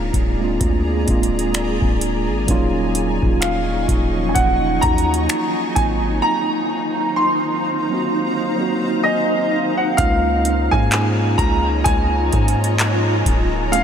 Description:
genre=contemporary R&B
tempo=64 BPM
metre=4/4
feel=swing 58% on 16ths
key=Db major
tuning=A4 = 441 Hz
part: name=warm grand piano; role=melody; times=0.0-13.8 s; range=Eb5 to C6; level=-21 LUFS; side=equal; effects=analog chorus, ping-pong delay
part: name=mellow tine electric piano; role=accompaniment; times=0.0-13.8 s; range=F3 to Ab5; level=-22 LUFS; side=right 2 dB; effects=medium stereo tremolo
part: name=granular cloud pad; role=sustained chords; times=0.0-13.8 s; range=Eb4 to Db6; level=-24 LUFS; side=left 1 dB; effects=built-in reverb
part: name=long sustained 808-style bass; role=bass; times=0.0-13.8 s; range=D1 to Ab2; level=-22 LUFS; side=equal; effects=none
part: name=booming analog drum machine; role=drums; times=0.1-13.8 s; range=finger snaps, handclaps, hi-hat, kick drum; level=-21 LUFS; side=equal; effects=none
room=moderate huge ambient reverb, RT60 7.5 s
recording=dreamy mix soaked in reverb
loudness=-16 LUFS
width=side -8 dB against mid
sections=0.0-10.0 A section; 10.0-13.8 B section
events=tine electric piano fill 8.6-10.0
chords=0.0 Bb7/D; 2.5 Ebm9; 5.8 Ab13; 10.0 Db69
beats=0.61 1.54 | 2.48 3.42 4.36 5.29 | 6.23 7.17 8.11 9.04 | 9.98 10.92 11.86 12.79 | 13.73

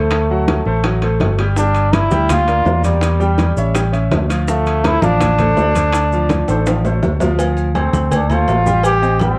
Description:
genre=latin, salsa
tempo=165 BPM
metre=4/4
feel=straight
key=D minor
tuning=A4 = 442 Hz
part: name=brilliant trombone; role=melody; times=0.0-9.4 s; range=G3 to G4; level=-20 LUFS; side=equal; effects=plate reverb
part: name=clear baby grand piano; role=accompaniment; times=0.0-9.4 s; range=F3 to G5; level=-24 LUFS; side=equal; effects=none
part: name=fingered electric bass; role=bass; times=0.0-9.3 s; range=G1 to E2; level=-19 LUFS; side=equal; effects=none
part: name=bongos and cowbell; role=percussion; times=0.1-9.4 s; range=none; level=-26 LUFS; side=equal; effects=none
part: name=congas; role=percussion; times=0.1-9.4 s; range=none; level=-24 LUFS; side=equal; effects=none
part: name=timbales and agogo bells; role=percussion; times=0.1-9.4 s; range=none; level=-26 LUFS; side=equal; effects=none
part: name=maracas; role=percussion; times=1.6-9.4 s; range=none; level=-39 LUFS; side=equal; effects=none
room=light reverb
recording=worn, warbling old tape, cassette tape, warbly pitch drift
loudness=-15 LUFS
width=mono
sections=0.0-7.4 A section; 7.4-9.4 B section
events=drum fill 6.5-7.4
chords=0.1 D7; 1.6 Gm7; 3.0 Em7b5; 3.8 A7; 4.5 Dm7; 8.8 Am7b5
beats=| 0.12 0.48 0.84 1.21 | 1.57 1.94 2.30 2.67 | 3.03 3.39 3.76 4.12 | 4.48 4.85 5.21 5.58 | 5.94 6.30 6.67 7.03 | 7.39 7.76 8.12 8.48 | 8.85 9.21

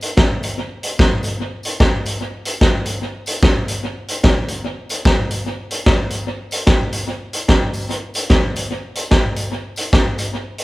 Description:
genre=ska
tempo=148 BPM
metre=4/4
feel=swing 61% on 8ths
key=none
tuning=none
part: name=raw garage drum kit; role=drums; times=0.0-10.6 s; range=hi-hat, kick drum, snare drum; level=-16 LUFS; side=equal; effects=tape echo
part: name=tambourine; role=percussion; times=0.0-10.6 s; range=none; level=-38 LUFS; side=left 2 dB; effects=none
room=light reverb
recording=band playing live in one room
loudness=-16 LUFS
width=side -19 dB against mid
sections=0.0-10.6 A section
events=none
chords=none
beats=0.18 0.58 0.99 | 1.40 1.80 2.21 2.62 | 3.02 3.43 3.84 4.24 | 4.65 5.05 5.46 5.87 | 6.27 6.68 7.09 7.49 | 7.90 8.31 8.71 9.12 | 9.53 9.93 10.34

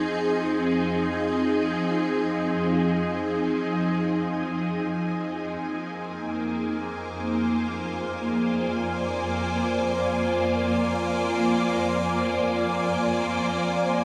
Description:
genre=ambient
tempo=free time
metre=none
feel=none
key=F dorian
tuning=A4 = 439 Hz
part: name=evolving wavetable pad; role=sustained chords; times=0.0-14.0 s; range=F3 to D5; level=-26 LUFS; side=equal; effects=ensemble chorus, built-in reverb, phaser
part: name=rich symphonic cello section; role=bass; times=0.0-14.0 s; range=F2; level=-37 LUFS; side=equal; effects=none
part: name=bright symphonic violin section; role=texture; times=0.0-14.0 s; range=Ab5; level=-37 LUFS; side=equal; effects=none
room=wet shimmer reverb, RT60 8.1 s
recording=cassette tape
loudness=-26 LUFS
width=mono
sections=0.0-14.0 A section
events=fade-in on cello section 0.0-14.0; fade-in on violin section 0.0-14.0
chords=0.0 Fm7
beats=free time

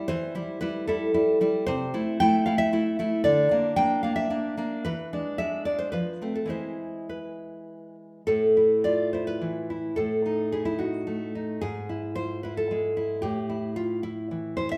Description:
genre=romantic piece for solo classical guitar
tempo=101-115 BPM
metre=3/4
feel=rubato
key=A minor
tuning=A4 = 439 Hz
part: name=nylon-string guitar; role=solo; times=0.0-14.8 s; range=G#2 to G5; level=-27 LUFS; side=equal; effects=none
room=wet recital hall reverb, RT60 1.2 s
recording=none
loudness=-27 LUFS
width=mono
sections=0.0-8.3 A section; 8.3-14.8 B section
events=none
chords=0.1 C/E; 1.7 Am/C; 3.2 Bb/D; 4.9 E7; 5.9 F; 6.5 E; 8.3 A5; 10.0 F#m13/A; 11.6 E/G#; 13.2 A5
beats=| 0.08 0.61 1.13 | 1.66 2.18 2.71 | 3.24 3.77 4.32 | 4.86 5.40 5.94 | 6.52 7.11 7.70 | 8.28 8.85 9.42 | 9.97 10.52 11.06 | 11.62 12.17 12.71 | 13.24 13.78 14.32

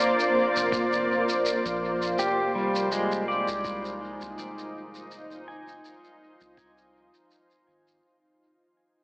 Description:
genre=ambient dub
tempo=82 BPM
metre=4/4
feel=swing 54% on 16ths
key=unclear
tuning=A4 = 440 Hz
part: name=granular cloud pad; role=sustained chords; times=0.0-8.0 s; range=Bb3 to D5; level=-26 LUFS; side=equal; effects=built-in reverb
part: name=shaker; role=drums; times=0.2-8.0 s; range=none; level=-36 LUFS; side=equal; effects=overdrive, studio reverb, dub echo
part: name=soft dub sub bass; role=bass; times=0.6-8.0 s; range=F1 to C2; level=-44 LUFS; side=equal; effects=none
part: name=electronic kick drum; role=drums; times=0.7-6.7 s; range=none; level=-40 LUFS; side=equal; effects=overdrive, studio reverb
part: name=pedal steel guitar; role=arpeggios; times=2.2-7.7 s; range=G3 to Ab5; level=-29 LUFS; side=equal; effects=low-pass filter, tape echo
room=moderate huge ambient reverb, RT60 7.3 s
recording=vinyl crackle, AM radio sound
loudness=-24 LUFS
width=side -35 dB against mid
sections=0.0-8.0 A section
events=fade-out 0.0-8.0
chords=0.0 Bb; 2.2 Fm7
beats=0.72 1.45 | 2.19 2.92 3.65 4.38 | 5.11 5.84 6.58 7.31

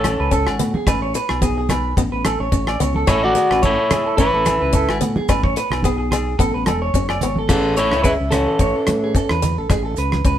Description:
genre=highlife guitar band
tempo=109 BPM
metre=4/4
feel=swing 54% on 16ths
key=A major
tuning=A4 = 440 Hz
part: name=electric guitar at the edge of break-up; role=melody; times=0.0-9.4 s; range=C#4 to D5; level=-18 LUFS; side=equal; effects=none
part: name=clean electric guitar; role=arpeggios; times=0.0-10.4 s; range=F#4 to E5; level=-23 LUFS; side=right 3 dB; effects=none
part: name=fingered electric bass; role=bass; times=0.0-10.4 s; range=E1 to A2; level=-23 LUFS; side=equal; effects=none
part: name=damped 70s drum kit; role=drums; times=0.0-10.4 s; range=crash cymbal, hi-hat, kick drum, rim click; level=-21 LUFS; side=equal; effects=none
part: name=agogo bells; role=percussion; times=0.0-7.2 s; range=none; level=-30 LUFS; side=left 6 dB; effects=none
part: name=congas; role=percussion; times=0.0-10.2 s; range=none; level=-24 LUFS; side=right 2 dB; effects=none
part: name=picked swing-style acoustic guitar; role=accompaniment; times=0.1-10.4 s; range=G#3 to E4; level=-26 LUFS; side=left 6 dB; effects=none
part: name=maracas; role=percussion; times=0.1-10.4 s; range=none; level=-35 LUFS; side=right 6 dB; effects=none
part: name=edgy tenor saxophone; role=second line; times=7.5-9.4 s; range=E3 to A3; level=-29 LUFS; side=left 4 dB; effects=none
room=light reverb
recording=band playing live in one room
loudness=-16 LUFS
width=side -11 dB against mid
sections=0.0-7.5 A section; 7.5-10.4 B section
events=none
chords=0.0 Amaj7; 0.9 Amaj7sus2; 2.0 N.C.; 3.1 Amaj7; 5.3 Amaj7sus2; 6.4 D (rootless); 7.5 Amaj7; 9.7 Amaj9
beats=0.32 | 0.87 1.42 1.97 2.52 | 3.08 3.63 4.18 4.73 | 5.28 5.83 6.38 6.94 | 7.49 8.04 8.59 9.14 | 9.70 10.25

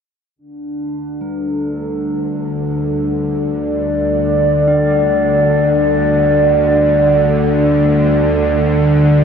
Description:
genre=dark ambient drone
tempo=free time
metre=none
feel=none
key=unclear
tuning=A4 = 442 Hz
part: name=dark analog pad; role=sustained chords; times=0.4-9.2 s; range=D4 to D5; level=-15 LUFS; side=right 1 dB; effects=wide subtle chorus
part: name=bowed-like drone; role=drone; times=1.5-9.2 s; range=D2 to D3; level=-16 LUFS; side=left 1 dB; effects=built-in reverb
part: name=bronze singing bowl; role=arpeggios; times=1.2-9.2 s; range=G3 to D4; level=-26 LUFS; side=equal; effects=ping-pong delay
room=wet cathedral reverb, RT60 6.8 s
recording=worn, warbling old tape, cassette tape, warbly pitch drift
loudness=-12 LUFS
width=side -7 dB against mid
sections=0.4-9.2 A section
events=fade-in on synth drone 0.4-9.2; fade-in on singing bowl 0.4-9.2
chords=0.4 D5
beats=free time

